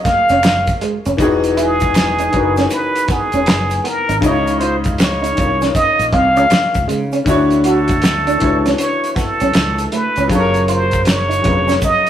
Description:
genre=R&B, neo-soul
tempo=79 BPM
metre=4/4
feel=swing 64% on 16ths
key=unclear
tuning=A4 = 440 Hz
part: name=trumpet with plunger mute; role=melody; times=0.0-12.1 s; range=G#4 to E#5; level=-16 LUFS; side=right 1 dB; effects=none
part: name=warm upright piano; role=accompaniment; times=0.0-12.1 s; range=C#3 to D#5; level=-19 LUFS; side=left 2 dB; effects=none
part: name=electric guitar through a small old amp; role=second line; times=0.1-11.8 s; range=G#3 to F#4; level=-22 LUFS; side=right 3 dB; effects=none
part: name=mellow fretless electric bass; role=bass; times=0.1-11.8 s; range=E1 to C#3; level=-22 LUFS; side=equal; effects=none
part: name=cloth-damped thuddy drum kit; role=drums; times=0.1-12.1 s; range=hi-hat, kick drum, snare drum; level=-19 LUFS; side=equal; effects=none
part: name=egg shaker and finger snaps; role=percussion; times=0.1-12.0 s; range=none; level=-32 LUFS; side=right 4 dB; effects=none
room=moderate stone room reverb, RT60 1.2 s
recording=rough rehearsal-room recording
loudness=-12 LUFS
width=side -10 dB against mid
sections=0.0-12.1 A section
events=none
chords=0.0 F#maj9; 1.2 Emaj9; 4.2 C#maj9; 7.3 Dmaj9; 10.3 F#maj9

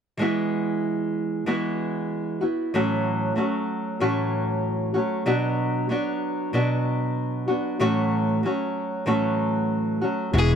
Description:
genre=acoustic pop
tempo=95 BPM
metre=4/4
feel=straight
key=A major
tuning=A4 = 440 Hz
part: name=nylon-string guitar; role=accompaniment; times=0.2-10.6 s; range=A2 to F#4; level=-22 LUFS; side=equal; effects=none
part: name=upright bass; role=bass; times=10.3-10.6 s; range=E1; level=-19 LUFS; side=left 1 dB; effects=none
part: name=clear violin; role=melody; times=10.4-10.5 s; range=G#4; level=-23 LUFS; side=left 4 dB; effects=none
room=little or no reverb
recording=dry, close 1970s-style studio recording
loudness=-22 LUFS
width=side -7 dB against mid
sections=0.2-10.3 A section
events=none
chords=0.2 Eadd9; 2.7 A6; 5.3 Bm; 7.8 A6

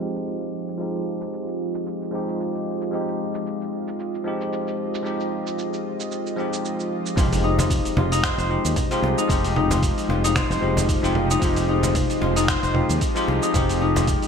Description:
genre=organic downtempo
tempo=113 BPM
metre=4/4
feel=swing 56% on 16ths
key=F minor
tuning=A4 = 440 Hz
part: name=bell-like tine electric piano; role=accompaniment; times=0.0-14.3 s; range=F3 to G4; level=-26 LUFS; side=left 1 dB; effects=wide subtle chorus, sidechain pumping, ping-pong delay
part: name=bowed-like drone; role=sustained chords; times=0.0-14.3 s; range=F3 to F5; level=-29 LUFS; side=right 2 dB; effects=built-in reverb, sidechain pumping
part: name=Celtic harp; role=arpeggios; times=0.0-1.6, 7.2-14.3 s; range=C4 to C5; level=-26 LUFS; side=left 4 dB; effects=ping-pong delay
part: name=dusty soul sampler-style drum kit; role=drums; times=0.2-14.3 s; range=cabasa, congas, finger snaps, hi-hat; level=-28 LUFS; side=right 3 dB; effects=low-pass filter on hats, low-pass filter on perc, low-pass filter on snare, gated reverb
part: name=fretless electric bass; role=bass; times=7.2-14.2 s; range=F1 to Eb2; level=-24 LUFS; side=equal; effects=none
part: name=electronic kick drum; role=drums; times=7.2-14.2 s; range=none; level=-25 LUFS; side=equal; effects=none
part: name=impact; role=sound effects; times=7.2-9.3 s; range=none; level=-29 LUFS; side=equal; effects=none
part: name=cajon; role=percussion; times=7.3-14.1 s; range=none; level=-30 LUFS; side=left 1 dB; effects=none
room=moderate plate reverb, RT60 2.1 s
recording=bright 1980s-style digital production, low-pass filter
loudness=-20 LUFS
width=side -6 dB against mid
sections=0.0-7.2 A section; 7.2-14.3 B section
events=filter sweep on synth drone 0.0-7.2; filter sweep 0.0-7.2; impact 7.2-9.3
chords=0.0 Fm7

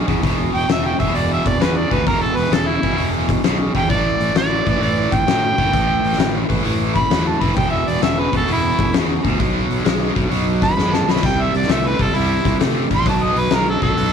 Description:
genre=blues rock power trio and southern rock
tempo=131 BPM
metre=4/4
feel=swing 67% on 8ths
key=E minor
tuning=A4 = 440 Hz
part: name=biting overdriven guitar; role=riff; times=0.0-14.1 s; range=E2 to A3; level=-21 LUFS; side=right 2 dB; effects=harmonic tremolo
part: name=fuzz fingered electric bass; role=bass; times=0.1-14.1 s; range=E1 to C3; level=-22 LUFS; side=right 2 dB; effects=overdrive
part: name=oversized low-tuned drum kit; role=drums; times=0.1-14.1 s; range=hi-hat, kick drum, snare drum, splash cymbal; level=-20 LUFS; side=left 4 dB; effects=none
part: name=mellow harmonica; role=melody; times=0.6-14.1 s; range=E4 to C6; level=-21 LUFS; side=right 2 dB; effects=overdrive, slapback echo
room=little or no reverb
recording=1960s-style stereo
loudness=-15 LUFS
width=side -7 dB against mid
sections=0.0-14.1 A section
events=harmonica solo 0.0-14.1; drum fill 10.8-11.2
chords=0.0 E5; 3.9 A5; 7.6 E5; 9.4 B5; 11.2 C; 13.1 B7(no3)

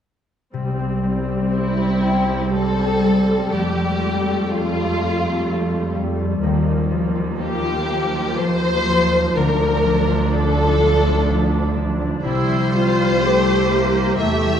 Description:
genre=cinematic, emotional film score for orchestra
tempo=62 BPM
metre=3/4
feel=rubato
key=unclear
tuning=A4 = 437 Hz
part: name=rich studio viola section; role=accompaniment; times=0.5-14.6 s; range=F3 to G4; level=-24 LUFS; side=right 2 dB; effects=none
part: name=concert harp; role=arpeggios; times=0.5-14.6 s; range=C3 to A5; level=-22 LUFS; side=left 4 dB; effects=none
part: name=rich studio cello section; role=bass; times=0.5-14.6 s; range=C2 to F2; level=-22 LUFS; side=right 3 dB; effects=none
part: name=rich studio violin section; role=second line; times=1.5-14.6 s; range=E4 to E5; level=-21 LUFS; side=left 2 dB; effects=none
room=wet recital hall reverb, RT60 1.3 s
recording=dark, warm production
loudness=-16 LUFS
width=side -8 dB against mid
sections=0.5-14.6 A section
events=none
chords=0.5 C; 3.5 Fadd9; 6.4 Ebadd9; 9.4 Bb/D; 12.3 C

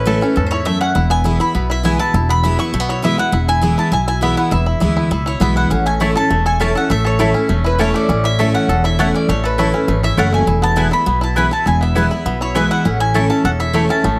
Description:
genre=bluegrass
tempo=202 BPM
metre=4/4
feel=straight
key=A major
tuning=A4 = 440 Hz
part: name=mandolin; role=melody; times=0.0-14.2 s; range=B4 to C#6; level=-22 LUFS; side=equal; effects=none
part: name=picked steel-string acoustic guitar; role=accompaniment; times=0.0-14.2 s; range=E2 to E4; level=-21 LUFS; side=equal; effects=none
part: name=bluegrass banjo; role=arpeggios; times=0.0-14.2 s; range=A3 to A4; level=-25 LUFS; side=equal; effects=none
part: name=upright bass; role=bass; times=0.0-14.2 s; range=E1 to E2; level=-21 LUFS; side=equal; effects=none
part: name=mandolin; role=stabs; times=6.0-13.8 s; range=A3 to A5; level=-24 LUFS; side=equal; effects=none
room=light reverb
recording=close, detailed microphones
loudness=-16 LUFS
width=mono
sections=0.0-14.2 A section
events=none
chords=0.0 A; 1.0 E; 5.7 A; 10.5 E; 12.9 A

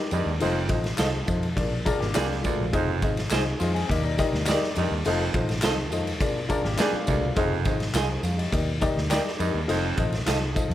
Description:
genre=uptempo 1960s-style soul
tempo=104 BPM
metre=4/4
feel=straight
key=unclear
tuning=A4 = 443 Hz
part: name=electric guitar through a small old amp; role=riff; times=0.0-7.4 s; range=G3 to Bb4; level=-33 LUFS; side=left 6 dB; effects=none
part: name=dark upright piano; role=accompaniment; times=0.1-10.7 s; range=D4 to C6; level=-28 LUFS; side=left 4 dB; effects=plate reverb
part: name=clear baritone saxophone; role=riff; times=0.1-10.1 s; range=D2 to G2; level=-31 LUFS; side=right 10 dB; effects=none
part: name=vintage muted fingered electric bass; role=bass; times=0.1-10.7 s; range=F1 to F2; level=-28 LUFS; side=equal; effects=none
part: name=raw garage drum kit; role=drums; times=0.1-10.7 s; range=kick drum, ride cymbal, snare drum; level=-28 LUFS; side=equal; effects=none
part: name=tambourine and handclaps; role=percussion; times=0.1-10.7 s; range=none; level=-36 LUFS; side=left 1 dB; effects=none
part: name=clean electric guitar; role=stabs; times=1.0-10.4 s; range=F4 to Eb5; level=-33 LUFS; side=right 5 dB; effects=spring reverb, plate reverb
room=light reverb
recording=vinyl crackle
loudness=-22 LUFS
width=side -12 dB against mid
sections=0.0-10.7 A section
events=none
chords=0.4 F7; 1.6 Bb7; 2.7 Fm7; 3.9 Ebmaj7; 5.1 F7; 6.2 Bb7; 7.4 Fm7; 8.5 Ebmaj7; 9.7 F7

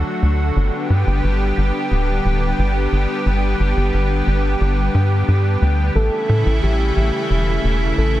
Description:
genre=synthwave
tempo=89 BPM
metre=4/4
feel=straight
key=unclear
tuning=A4 = 440 Hz
part: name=lush unison pad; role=sustained chords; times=0.0-8.2 s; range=C#3 to G4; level=-20 LUFS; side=equal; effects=chorus
part: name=tight sequencer bass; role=bass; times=0.0-8.2 s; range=D1 to A2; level=-17 LUFS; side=equal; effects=none
part: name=soft octave-layered synth lead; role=melody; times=6.0-8.2 s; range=G4 to A4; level=-23 LUFS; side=equal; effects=chorus, digital delay
room=light reverb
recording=dense, heavily limited modern master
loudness=-16 LUFS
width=side -14 dB against mid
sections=0.0-8.2 A section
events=none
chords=0.0 D; 0.6 G; 6.0 A

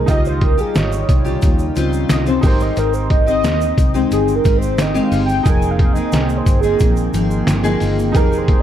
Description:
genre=indie pop, bedroom pop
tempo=89 BPM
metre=4/4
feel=straight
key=F minor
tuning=A4 = 440 Hz
part: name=warm velvety synth lead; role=melody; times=0.0-8.6 s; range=Ab4 to Ab5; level=-21 LUFS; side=right 1 dB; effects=wide subtle chorus
part: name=bright upright piano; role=accompaniment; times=0.0-8.6 s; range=Eb4 to G5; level=-26 LUFS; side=right 6 dB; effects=cassette tape
part: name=picked steel-string acoustic guitar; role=accompaniment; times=0.0-8.6 s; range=Db3 to Ab4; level=-21 LUFS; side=left 5 dB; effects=lush chorus, vibrato effect
part: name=warbly tape-like pad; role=sustained chords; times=0.0-8.6 s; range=Eb3 to G5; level=-25 LUFS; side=right 5 dB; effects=chorus, built-in reverb
part: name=vintage muted fingered electric bass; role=bass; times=0.0-8.6 s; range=F1 to Eb2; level=-21 LUFS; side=equal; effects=none
part: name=trip hop sampler-style drum kit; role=drums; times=0.1-8.6 s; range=hi-hat, kick drum, snare drum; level=-16 LUFS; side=equal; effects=none
part: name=tube shaker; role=percussion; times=0.1-8.5 s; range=none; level=-40 LUFS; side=right 7 dB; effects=none
room=small room ambience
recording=dark, warm production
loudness=-13 LUFS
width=side -10 dB against mid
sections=0.0-8.6 A section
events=soft synth lead solo 0.0-8.6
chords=0.1 Dbmaj9#11; 2.4 Abmaj7; 5.5 Fm11

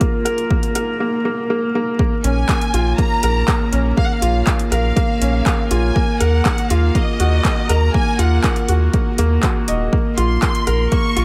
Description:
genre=piano and strings electronica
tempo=121 BPM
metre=4/4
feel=straight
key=Bb minor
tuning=A4 = 440 Hz
part: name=felt-muted upright piano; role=riff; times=0.0-11.2 s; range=Bb3 to Eb5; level=-22 LUFS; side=equal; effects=digital delay
part: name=deep house drum kit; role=drums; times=0.0-11.2 s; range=handclaps, hi-hat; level=-27 LUFS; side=equal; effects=overdrive, high-pass filter on hats, high-pass filter on snare
part: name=electronic kick drum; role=drums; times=0.0-11.0 s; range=none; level=-21 LUFS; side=equal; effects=overdrive
part: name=warm studio violin section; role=melody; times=2.2-11.2 s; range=Eb5 to Db6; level=-26 LUFS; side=equal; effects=digital delay
part: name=warm sub bass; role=bass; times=2.2-11.2 s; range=Eb1 to Eb2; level=-19 LUFS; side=equal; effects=tube saturation, sidechain pumping
room=light reverb, small room reverb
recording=none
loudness=-17 LUFS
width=mono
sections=0.0-2.0 A section; 2.0-11.2 B section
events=build-up 0.0-2.0; drop 2.0-11.2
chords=0.0 Bb5; 2.0 Bbm; 6.0 Ebmadd9; 9.9 Bbmadd9

